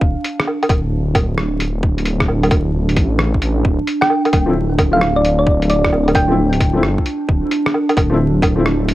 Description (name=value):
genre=future garage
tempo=132 BPM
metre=4/4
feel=swing 66% on 16ths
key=D minor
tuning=A4 = 441 Hz
part: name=warbly tape-like pad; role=sustained chords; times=0.0-8.9 s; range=D4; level=-22 LUFS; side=right 3 dB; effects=chorus, built-in reverb, vintage 12-bit sampler grit, sidechain pumping
part: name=swelling detuned saw bass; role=bass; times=0.0-8.9 s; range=D1 to A1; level=-17 LUFS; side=equal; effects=sidechain pumping
part: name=electronic kick drum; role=drums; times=0.0-8.5 s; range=none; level=-16 LUFS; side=equal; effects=vintage 12-bit sampler grit
part: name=lo-fi sampler-style drum kit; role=drums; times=0.2-8.9 s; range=hi-hat, rim click, woodblock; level=-20 LUFS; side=equal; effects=vintage 12-bit sampler grit
part: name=thumb-piano-like synth pluck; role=melody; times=4.0-6.8 s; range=D5 to G5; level=-19 LUFS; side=equal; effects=chorus, tape echo
part: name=warm upright piano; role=accompaniment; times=4.5-8.6 s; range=F3 to E4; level=-21 LUFS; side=left 2 dB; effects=sidechain pumping, analog delay
room=little or no reverb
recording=dry, gritty hardware recording, vinyl crackle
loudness=-13 LUFS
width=side -16 dB against mid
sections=0.0-8.9 A section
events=none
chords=none